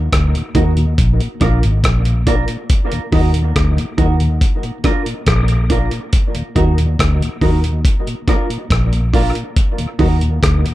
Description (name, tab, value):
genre	dub reggae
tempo	70 BPM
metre	4/4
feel	straight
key	Eb harmonic minor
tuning	A4 = 440 Hz
part	vintage muted fingered electric bass	bass	0.0-10.6 s	Ab1 to Eb2	-15 LUFS	equal	none
part	dusty soul sampler-style drum kit	drums	0.1-10.7 s	hi-hat, kick drum, rim click	-16 LUFS	equal	none
part	mellow tonewheel organ	accompaniment	0.3-10.7 s	Eb2 to Eb4	-25 LUFS	left 2 dB	chorus vibrato, slow rotary speaker, dub echo
part	mellow electric guitar	accompaniment	0.6-10.2 s	D4 to Bb4	-22 LUFS	right 3 dB	wide subtle chorus, dub echo
room	light reverb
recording	dark, warm production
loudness	-13 LUFS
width	side -16 dB against mid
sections	0.0-10.7 A section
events	none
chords	0.0 Ebm; 1.0 Bb; 2.7 Ebm; 4.4 Bb; 6.1 Ebm; 7.8 Bb; 9.6 Ebm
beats	0.12 0.98 1.84 | 2.70 3.55 4.41 5.27 | 6.13 6.99 7.84 8.70 | 9.56 10.42